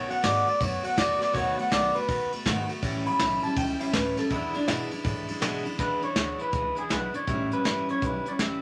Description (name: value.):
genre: rockabilly.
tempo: 162 BPM.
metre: 4/4.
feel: swing 64% on 8ths.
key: E mixolydian.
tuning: A4 = 438 Hz.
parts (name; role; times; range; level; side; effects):
electric guitar through a small old amp; melody; 0.0-8.6 s; D4 to B5; -30 LUFS; equal; none.
picked steel-string acoustic guitar; accompaniment; 0.0-8.6 s; E2 to F#4; -33 LUFS; equal; none.
upright bass; bass; 0.0-8.6 s; F#1 to B2; -39 LUFS; equal; none.
soft brush drum kit; drums; 0.1-8.5 s; hi-hat, kick drum, ride cymbal, snare drum; -32 LUFS; equal; none.
room: wet studio ambience, RT60 0.5 s.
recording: none.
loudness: -27 LUFS.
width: mono.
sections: 0.0-5.8 A section; 5.8-8.6 B section.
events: clean electric guitar solo 0.0-5.8.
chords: 0.0 B7; 2.8 A7; 4.3 E7; 7.3 A7.